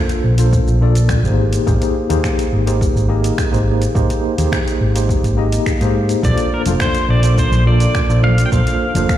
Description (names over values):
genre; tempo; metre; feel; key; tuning
sunset chillout; 105 BPM; 4/4; straight; Bb major; A4 = 442 Hz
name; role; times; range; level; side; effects
tine electric piano; accompaniment; 0.0-9.2 s; Bb3 to Eb5; -19 LUFS; moving between left 4 dB and right 3 dB; medium stereo tremolo, auto-pan, low-pass filter, tape echo
deep house drum kit; drums; 0.1-9.2 s; finger snaps, hi-hat, shaker; -27 LUFS; right 1 dB; overdrive, small room ambience
mellow fretless electric bass; bass; 0.2-9.0 s; F1 to Ab2; -15 LUFS; equal; none
electronic kick drum; drums; 0.5-9.2 s; none; -20 LUFS; equal; overdrive, small room ambience
pedal steel guitar; melody; 6.2-9.2 s; Bb4 to G5; -20 LUFS; equal; tape echo
congas; percussion; 6.7-9.1 s; none; -25 LUFS; left 4 dB; none
room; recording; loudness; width
light reverb; played on a big sound system in a bare room, large studio reverb; -13 LUFS; side -12 dB against mid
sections
0.0-9.2 A section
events
none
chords
0.0 Bbmaj9; 1.4 Abmaj7; 6.2 Bbmaj9